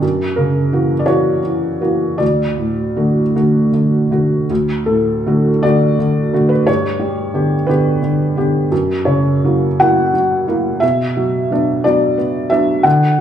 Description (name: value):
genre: neoclassical minimalist piano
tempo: 51-61 BPM (dotted quarters)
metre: 6/8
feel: rubato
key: D major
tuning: A4 = 445 Hz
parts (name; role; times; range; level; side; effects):
- felt-muted upright piano; solo; 0.0-13.2 s; D2 to F#5; -13 LUFS; equal; none
room: moderate large studio reverb, RT60 1.4 s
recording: band playing live in one room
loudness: -13 LUFS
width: side -9 dB against mid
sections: 0.0-4.5 A section; 4.5-13.2 A section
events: none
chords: 0.0 F#7; 2.2 D; 6.7 G; 8.7 F#7; 10.8 Bm